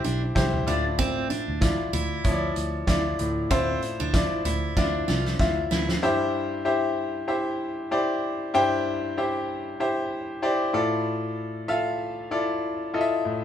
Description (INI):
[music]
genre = piano-driven pop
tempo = 95 BPM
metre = 4/4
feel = swing 56% on 16ths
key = C major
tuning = A4 = 440 Hz
[part]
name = bright concert grand piano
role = accompaniment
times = 0.0-13.4 s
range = G2 to G5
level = -25 LUFS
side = left 2 dB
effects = none
[part]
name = picked steel-string acoustic guitar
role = riff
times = 0.0-5.9 s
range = C4 to F4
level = -31 LUFS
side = right 4 dB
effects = none
[part]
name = vintage muted picked electric bass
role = bass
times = 0.0-6.0 s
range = B1 to D2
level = -30 LUFS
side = right 1 dB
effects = none
[part]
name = loose indie drum kit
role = drums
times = 0.0-6.0 s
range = hi-hat, kick drum, snare drum, toms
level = -26 LUFS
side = right 1 dB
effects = none
[sound]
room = moderate large studio reverb, RT60 1.0 s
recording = band playing live in one room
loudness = -23 LUFS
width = side -9 dB against mid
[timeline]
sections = 0.0-6.0 A section; 6.0-13.4 B section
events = drum fill 4.8-6.0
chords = 0.0 C; 0.7 Dmadd9; 6.0 C; 10.7 Dmadd9